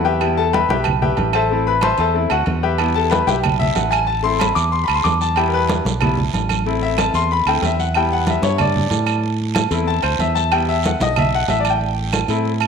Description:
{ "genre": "latin, salsa", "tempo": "186 BPM", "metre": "4/4", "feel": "straight", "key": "E minor", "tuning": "A4 = 438 Hz", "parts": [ { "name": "bright grand piano", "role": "accompaniment", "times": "0.0-12.5 s", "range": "G3 to D6", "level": "-19 LUFS", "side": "left 7 dB", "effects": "none" }, { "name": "fingered electric bass", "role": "bass", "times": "0.0-12.7 s", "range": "A1 to A2", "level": "-22 LUFS", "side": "right 2 dB", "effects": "none" }, { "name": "congas", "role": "percussion", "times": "0.1-12.7 s", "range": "none", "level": "-24 LUFS", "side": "right 1 dB", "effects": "none" }, { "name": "agogo bells and timbales", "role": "percussion", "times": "0.2-12.7 s", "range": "none", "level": "-23 LUFS", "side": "right 15 dB", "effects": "none" }, { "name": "claves", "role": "percussion", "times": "0.2-12.7 s", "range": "none", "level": "-28 LUFS", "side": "right 12 dB", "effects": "none" }, { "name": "guiro", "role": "percussion", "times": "2.8-12.7 s", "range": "none", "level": "-32 LUFS", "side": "right 13 dB", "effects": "none" } ], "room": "moderate echo chamber reverb, RT60 1.9 s, small room ambience", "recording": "1960s-style stereo with parts hard left and right", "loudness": "-15 LUFS", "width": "side -6 dB against mid", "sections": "0.0-12.7 A section", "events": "grand piano solo 0.0-12.7", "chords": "0.2 Em; 1.5 Am; 2.8 Em; 4.1 Am; 5.4 Em; 6.7 Am; 7.9 Em; 9.2 Am; 10.5 Em; 11.8 Am" }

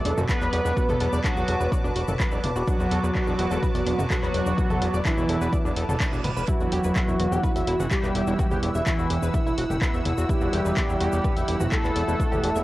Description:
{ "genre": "melodic techno", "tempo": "126 BPM", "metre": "4/4", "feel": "straight", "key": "E minor", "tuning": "A4 = 438 Hz", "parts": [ { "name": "analog synth brass", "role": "melody", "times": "0.0-12.6 s", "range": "E3 to B4", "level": "-27 LUFS", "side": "equal", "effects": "chorus, sidechain pumping, cassette tape, analog delay" }, { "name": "evolving wavetable pad", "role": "sustained chords", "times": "0.1-12.6 s", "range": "E4 to E6", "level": "-35 LUFS", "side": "left 1 dB", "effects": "phaser, built-in reverb, sidechain pumping, cassette tape" }, { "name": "tight sequenced synth", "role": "arpeggios", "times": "0.0-12.6 s", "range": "D4 to E5", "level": "-33 LUFS", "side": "equal", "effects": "chorus, sidechain pumping, cassette tape, tape echo" }, { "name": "brassy analog pad", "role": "stabs", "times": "0.0-12.6 s", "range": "B2 to E4", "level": "-33 LUFS", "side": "right 6 dB", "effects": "chorus, sidechain pumping, cassette tape, tape echo" }, { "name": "fat analog bass", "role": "bass", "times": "0.1-12.6 s", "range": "D1 to F#1", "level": "-27 LUFS", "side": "equal", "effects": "tube saturation, sidechain pumping" }, { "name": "punchy analog drum machine", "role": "drums", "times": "0.1-12.5 s", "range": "handclaps, hi-hat, toms", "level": "-31 LUFS", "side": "equal", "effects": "cassette tape" }, { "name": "tube shaker", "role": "percussion", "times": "0.2-12.6 s", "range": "none", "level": "-47 LUFS", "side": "left 8 dB", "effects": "none" }, { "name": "electronic kick drum", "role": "drums", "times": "0.3-12.3 s", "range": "none", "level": "-26 LUFS", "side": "equal", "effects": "cassette tape" }, { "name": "reverse cymbal", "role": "sound effects", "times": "5.7-6.5 s", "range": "none", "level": "-40 LUFS", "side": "right 5 dB", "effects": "none" }, { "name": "overtone-sweeping drone", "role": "drone", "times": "9.2-12.6 s", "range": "E2 to B2", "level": "-42 LUFS", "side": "equal", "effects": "none" } ], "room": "light reverb", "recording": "home recording on cassette", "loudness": "-21 LUFS", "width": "side -16 dB against mid", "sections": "0.0-12.6 A section", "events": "reverse cymbal 5.7-6.5", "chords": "0.0 Bm7/E; 6.5 Emadd9" }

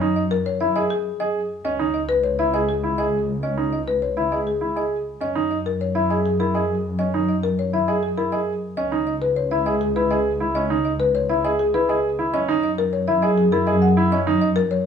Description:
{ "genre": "classical, minimalist pattern music", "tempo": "101 BPM", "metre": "3/4", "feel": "straight", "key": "F# mixolydian", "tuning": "A4 = 441 Hz", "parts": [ { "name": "folk marimba with medium mallets", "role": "melody", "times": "0.0-14.9 s", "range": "G#4 to F#5", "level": "-23 LUFS", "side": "left 5 dB", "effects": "none" }, { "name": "clear grand piano", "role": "arpeggios", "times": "0.0-14.5 s", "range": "C#4 to G#4", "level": "-23 LUFS", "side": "right 4 dB", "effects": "none" }, { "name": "dark symphonic double bass section", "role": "bass", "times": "0.0-14.9 s", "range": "C#2 to F#2", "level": "-24 LUFS", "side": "left 1 dB", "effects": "none" } ], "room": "moderate large studio reverb, RT60 1.2 s", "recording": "none", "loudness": "-19 LUFS", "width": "side -7 dB against mid", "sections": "0.0-14.9 A section", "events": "none", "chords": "0.0 F#sus2; 1.6 C#madd9; 5.2 F#13; 8.8 C#m9; 12.3 F#13" }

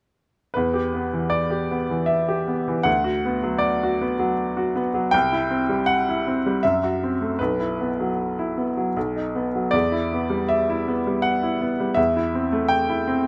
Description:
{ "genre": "classical, romantic character piece for solo piano", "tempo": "79 BPM", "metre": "3/4", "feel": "uneven beats, rubato", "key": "E minor", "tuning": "A4 = 441 Hz", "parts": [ { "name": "bright baby grand piano", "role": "solo", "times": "0.5-13.3 s", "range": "B1 to G5", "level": "-23 LUFS", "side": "equal", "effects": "none" } ], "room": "light reverb", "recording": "close, detailed microphones", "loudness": "-23 LUFS", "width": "mono", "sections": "0.6-13.3 A section", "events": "none", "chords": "0.6 Em; 2.9 Bm/D; 5.1 C; 6.6 F#m7b5; 7.4 Bsus4; 9.0 B; 9.7 Em; 12.0 Am/E" }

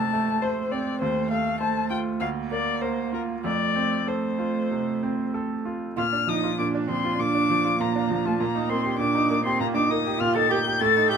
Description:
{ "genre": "quick classical-period movement for piano trio", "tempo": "98 BPM", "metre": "4/4", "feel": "uneven beats, rubato", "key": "Bb major", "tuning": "A4 = 440 Hz", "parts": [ { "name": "muted violin", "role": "melody", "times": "0.0-11.2 s", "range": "Bb4 to A6", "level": "-26 LUFS", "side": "left 6 dB", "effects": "none" }, { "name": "muted cello", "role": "second line", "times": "0.0-11.2 s", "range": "A3 to A4", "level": "-27 LUFS", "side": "right 5 dB", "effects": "none" }, { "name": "bright baby grand piano", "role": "accompaniment", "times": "0.0-11.2 s", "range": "D2 to C5", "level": "-27 LUFS", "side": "right 1 dB", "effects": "none" } ], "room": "moderate studio reverb, RT60 0.6 s", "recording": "minimal, uncompressed stereo recording", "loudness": "-22 LUFS", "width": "side -6 dB against mid", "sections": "0.0-6.0 A section; 6.0-11.2 B section", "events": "none", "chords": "0.0 F; 1.0 F7/Eb; 2.2 Bb/D; 3.5 F; 6.0 Bb; 8.4 Eb/Bb" }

